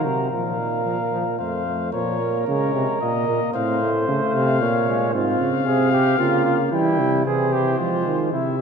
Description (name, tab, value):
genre	classical, imitative canzona for brass ensemble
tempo	112 BPM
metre	3/4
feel	straight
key	Bb minor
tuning	A4 = 440 Hz
part	mellow trumpet	melody	0.0-8.6 s	C5 to G5	-26 LUFS	left 10 dB	none
part	mellow flugelhorn	second line	0.0-8.6 s	E4 to Db5	-24 LUFS	right 4 dB	none
part	clear trombone	accompaniment	0.0-8.3 s	Eb3 to C4	-26 LUFS	right 2 dB	none
part	mellow euphonium	bass	0.0-8.6 s	F2 to F3	-23 LUFS	right 1 dB	none
room	wet church reverb, RT60 2.9 s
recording	dark, warm production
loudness	-18 LUFS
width	side -6 dB against mid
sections	0.0-1.9 A section; 1.9-8.3 B section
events	none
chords	0.3 Fsus4/Bb; 1.4 F; 1.9 Bbm; 3.0 Eb5/Bb; 3.5 F/A; 4.6 Bbm; 5.1 Fm/Ab; 6.2 Bbm/Db; 6.7 C; 7.8 Fm